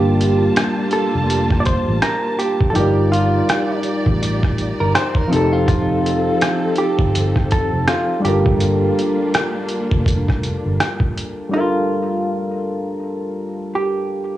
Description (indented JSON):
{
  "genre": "lo-fi hip hop",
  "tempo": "82 BPM",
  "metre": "4/4",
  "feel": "swing 59% on 16ths",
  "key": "G minor",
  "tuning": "A4 = 441 Hz",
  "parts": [
    { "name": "hollow-body jazz guitar", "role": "melody", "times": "0.0-14.4 s", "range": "F4 to D5", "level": "-22 LUFS", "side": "right 2 dB", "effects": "tape echo" },
    { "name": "soft electric-piano-like synth keys", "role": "accompaniment", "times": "0.0-14.4 s", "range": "F3 to D5", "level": "-20 LUFS", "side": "left 1 dB", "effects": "chorus, cassette tape" },
    { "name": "warm symphonic string section", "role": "sustained chords", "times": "0.0-11.5 s", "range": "F3 to A5", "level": "-26 LUFS", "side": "right 1 dB", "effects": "none" },
    { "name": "vintage muted fingered electric bass", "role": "bass", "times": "0.0-10.8 s", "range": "F1 to A1", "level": "-20 LUFS", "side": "equal", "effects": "transformer saturation" },
    { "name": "trip hop sampler-style drum kit", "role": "drums", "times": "0.2-11.4 s", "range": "hi-hat, kick drum, rim click", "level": "-19 LUFS", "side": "equal", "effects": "none" },
    { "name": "electric guitar through a small old amp", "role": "second line", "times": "4.8-6.6 s", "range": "F4 to C5", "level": "-24 LUFS", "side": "equal", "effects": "spring reverb, tape echo" }
  ],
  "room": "light reverb",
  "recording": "dry, gritty hardware recording, cassette tape, studio reverb",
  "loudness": "-16 LUFS",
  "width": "side -14 dB against mid",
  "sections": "0.0-11.5 A section; 11.5-14.4 B section",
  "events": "break 0.0-1.3",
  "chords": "0.0 Gm9; 2.7 Ebmaj7/G; 5.3 F7; 8.2 Gm7; 11.5 Gm9",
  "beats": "0.55 1.28 2.02 | 2.75 3.48 4.21 4.94 | 5.68 6.41 7.14 7.87 | 8.60 9.33 10.07 10.80 | 11.53 12.26 12.99 13.72"
}